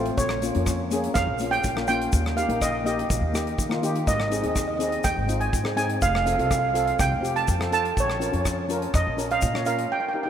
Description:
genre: calypso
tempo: 123 BPM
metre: 4/4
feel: straight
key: unclear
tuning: A4 = 440 Hz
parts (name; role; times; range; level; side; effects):
- steel pan; accompaniment; 0.0-10.3 s; A3 to Db5; -28 LUFS; left 2 dB; none
- upright bass; bass; 0.0-9.8 s; F1 to Eb3; -29 LUFS; equal; none
- modern studio drum kit; drums; 0.1-9.9 s; hi-hat, kick drum, rim click; -30 LUFS; equal; none
- steel pan; melody; 0.2-10.3 s; Db5 to A5; -26 LUFS; right 3 dB; none
- egg shaker; percussion; 0.2-9.8 s; none; -36 LUFS; left 7 dB; none
room: wet cathedral reverb, RT60 6.2 s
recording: in a vast, echoing space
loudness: -22 LUFS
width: side -9 dB against mid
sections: 0.0-10.3 A section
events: none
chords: 0.2 Bbm7; 2.1 Eb; 4.1 Ab; 6.0 F; 8.0 Bbm

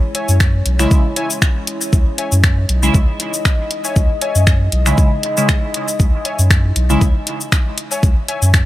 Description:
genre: dub techno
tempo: 118 BPM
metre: 4/4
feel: swing 54% on 16ths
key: C# minor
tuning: A4 = 441 Hz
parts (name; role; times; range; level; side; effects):
- deep dark ambient pad; sustained chords; 0.0-8.7 s; E4 to D#5; -25 LUFS; left 2 dB; chorus, built-in reverb, sidechain pumping
- warbly lo-fi synth keys; riff; 0.1-8.5 s; C#5 to G#5; -28 LUFS; left 2 dB; chorus, sidechain pumping, dub echo
- deep house drum kit; drums; 0.1-8.6 s; cabasa, finger snaps, hi-hat; -20 LUFS; left 1 dB; none
- soft dub sub bass; bass; 0.3-8.7 s; B1 to F#2; -15 LUFS; equal; sidechain pumping
- electronic kick drum; drums; 0.4-8.6 s; none; -14 LUFS; equal; none
- resonant sweep polysynth; stabs; 0.8-7.0 s; C#3 to E4; -22 LUFS; equal; chorus, phaser, sidechain pumping, dub echo
room: digital ambience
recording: vinyl crackle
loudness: -13 LUFS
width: side -15 dB against mid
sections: 0.0-8.7 A section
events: none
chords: 0.0 C#m

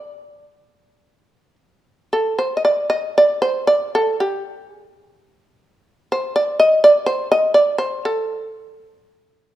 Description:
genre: japanese traditional, Japanese chamber music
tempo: 60 BPM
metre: 2/4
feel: rubato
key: D in sen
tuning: A4 = 442 Hz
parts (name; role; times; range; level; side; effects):
- shamisen; solo; 0.0-9.5 s; G4 to Eb5; -15 LUFS; equal; none
room: moderate recital hall reverb, RT60 1.5 s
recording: none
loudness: -15 LUFS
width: side -13 dB against mid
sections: 0.0-2.1 A section; 2.1-9.6 B section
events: none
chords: none

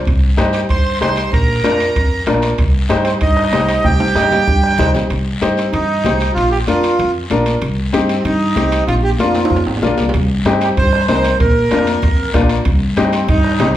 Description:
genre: latin, cumbia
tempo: 191 BPM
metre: 4/4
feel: straight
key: C minor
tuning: A4 = 443 Hz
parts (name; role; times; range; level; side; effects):
- upright bass; bass; 0.0-13.8 s; Ab1 to G2; -18 LUFS; equal; none
- bombo; percussion; 0.1-4.9, 10.1-13.8 s; none; -18 LUFS; right 1 dB; none
- congas; percussion; 0.1-13.8 s; none; -25 LUFS; left 2 dB; none
- guiro; percussion; 0.1-13.8 s; none; -30 LUFS; left 3 dB; none
- timbales; percussion; 0.1-13.8 s; none; -26 LUFS; right 3 dB; none
- clear upright piano; accompaniment; 0.4-13.8 s; Bb3 to Eb5; -18 LUFS; left 2 dB; none
- accordion; melody; 0.5-13.7 s; C4 to C6; -19 LUFS; right 2 dB; none
- clear trumpet; second line; 0.5-13.7 s; C4 to C5; -23 LUFS; right 3 dB; none
room: wet large studio reverb, RT60 0.8 s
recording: heard from further back in the room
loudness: -12 LUFS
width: side -12 dB against mid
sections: 0.0-5.1 A section; 5.1-13.8 A section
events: drum fill 3.8-5.1, 9.3-10.1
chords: 0.1 Cm; 1.3 Bb; 2.6 Cm; 6.4 Bb; 7.6 Cm; 8.9 Bb; 10.1 Cm; 11.4 Bb; 12.7 Cm

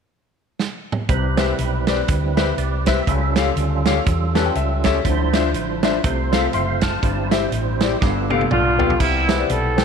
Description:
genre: uptempo gospel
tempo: 121 BPM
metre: 4/4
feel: swing 58% on 8ths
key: C major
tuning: A4 = 439 Hz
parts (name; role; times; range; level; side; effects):
- natural country drum kit; drums; 0.6-9.8 s; crash cymbal, hi-hat, kick drum, snare drum, toms; -22 LUFS; right 4 dB; none
- clear grand piano; accompaniment; 1.1-9.8 s; G2 to F6; -22 LUFS; left 12 dB; none
- percussive tonewheel organ; sustained chords; 1.1-9.0 s; F3 to A5; -25 LUFS; right 9 dB; slow rotary speaker, overdrive, chorus vibrato
- hollow-body short-scale fingered electric bass; bass; 1.1-9.8 s; F#1 to E2; -23 LUFS; equal; none
- mellow horn section; melody; 8.5-9.8 s; G3 to A4; -19 LUFS; right 1 dB; none
room: moderate echo chamber reverb, RT60 2.1 s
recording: 1960s-style stereo with parts hard left and right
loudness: -17 LUFS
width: side -6 dB against mid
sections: 0.0-1.1 A section; 1.1-9.0 B section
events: drum fill 0.6-1.1, 8.0-9.0; grand piano fill 4.1-5.0, 8.3-9.0; tonewheel organ fill 8.0-9.0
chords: 0.0 N.C.; 1.1 Cmaj7; 3.1 A7b13/C#; 5.0 Dm9; 6.0 F/C; 7.0 C/G; 8.0 G9; 9.0 Cmaj7

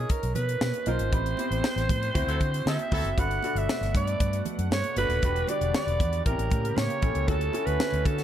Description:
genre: polished 1980s jazz-funk pop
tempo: 117 BPM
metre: 4/4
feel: straight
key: unclear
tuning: A4 = 440 Hz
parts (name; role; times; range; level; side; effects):
- growling alto saxophone; melody; 0.0-8.2 s; G#4 to F#5; -30 LUFS; right 2 dB; none
- clear baby grand piano; accompaniment; 0.0-8.2 s; B3 to D5; -33 LUFS; left 1 dB; wide subtle chorus
- vintage muted fingered electric bass; bass; 0.0-8.2 s; D#1 to D3; -29 LUFS; equal; none
- tight funk drum kit; drums; 0.1-8.2 s; hi-hat, kick drum, snare drum; -29 LUFS; equal; none
- congas; percussion; 0.4-8.2 s; none; -39 LUFS; right 9 dB; none
- clear horn section; second line; 2.3-3.1 s; F#3 to A4; -37 LUFS; equal; none
- chorused pulse-width pad; sustained chords; 3.2-8.2 s; B2 to F#5; -37 LUFS; right 1 dB; none
room: light reverb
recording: dark, warm production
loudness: -24 LUFS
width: side -10 dB against mid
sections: 0.0-8.2 A section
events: band accent 1.1-3.2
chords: 0.0 Bmaj9#11; 1.1 Am7; 2.2 D13; 3.2 Gmaj9; 5.2 Em9; 6.3 A7b9; 7.3 Dmaj7

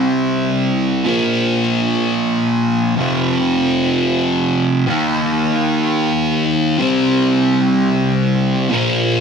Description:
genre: rock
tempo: 63 BPM (dotted quarters)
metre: 6/8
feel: straight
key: unclear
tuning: A4 = 440 Hz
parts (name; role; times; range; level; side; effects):
- fuzz guitar; solo; 0.0-9.2 s; F2 to Eb4; -14 LUFS; equal; distortion, phaser
room: moderate small room reverb, RT60 0.6 s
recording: rough rehearsal-room recording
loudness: -14 LUFS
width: side -6 dB against mid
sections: 0.0-9.2 A section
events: none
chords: 0.0 C5; 1.1 Bb5; 3.0 F5; 4.9 Eb5; 6.8 C5; 8.7 Bb5

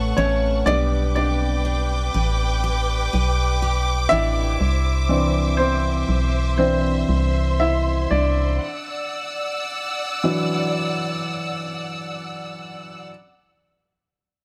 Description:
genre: pop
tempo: 50-61 BPM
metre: 4/4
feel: straight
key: D major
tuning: A4 = 440 Hz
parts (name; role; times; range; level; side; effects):
- warm upright piano; accompaniment; 0.0-13.1 s; E3 to E5; -26 LUFS; equal; none
- warm studio string section; sustained chords; 0.0-13.1 s; A4 to E6; -29 LUFS; equal; none
- picked steel-string acoustic guitar; arpeggios; 0.0-5.2 s; A2 to B4; -34 LUFS; equal; none
- organ-like FM bass; bass; 0.0-8.6 s; A1 to C2; -23 LUFS; equal; none
room: light reverb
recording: none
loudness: -21 LUFS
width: mono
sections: 0.0-13.1 A section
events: upright piano solo 0.0-13.1; slowing down 4.6-13.1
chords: 0.0 A; 0.7 G; 4.6 Cadd9; 8.6 Dadd9

